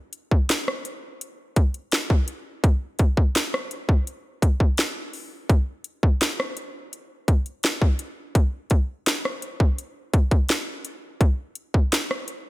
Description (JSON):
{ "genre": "R&B", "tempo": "84 BPM", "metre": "4/4", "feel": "straight", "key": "none", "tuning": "none", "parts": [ { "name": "trap drum kit", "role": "drums", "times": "0.1-12.4 s", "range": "hi-hat, kick drum, rim click, snare drum", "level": "-20 LUFS", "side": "equal", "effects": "none" } ], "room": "digital ambience", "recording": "none", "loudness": "-21 LUFS", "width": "side -18 dB against mid", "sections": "0.0-12.5 A section", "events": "none", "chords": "none", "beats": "0.49 1.21 1.92 | 2.64 3.35 4.07 4.78 | 5.49 6.21 6.92 7.64 | 8.35 9.06 9.78 10.49 | 11.21 11.92" }